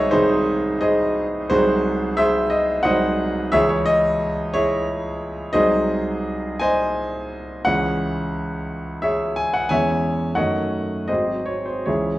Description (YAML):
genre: classical, romantic character piece for solo piano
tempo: 76-92 BPM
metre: 3/4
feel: rubato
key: C# minor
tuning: A4 = 439 Hz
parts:
  - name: clear grand piano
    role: solo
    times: 0.0-12.2 s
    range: G#1 to G#5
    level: -18 LUFS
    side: equal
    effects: none
room: moderate recital hall reverb, RT60 1.3 s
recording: worn, warbling old tape, cassette tape, warbly pitch drift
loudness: -18 LUFS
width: side -16 dB against mid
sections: 0.0-12.2 A section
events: none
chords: 0.0 G#/B#; 1.5 G#7/B#; 3.5 C#m; 5.5 G#7/B#; 7.7 C#m; 9.7 C#m/E; 10.4 D#m7b5/F#; 11.1 G#7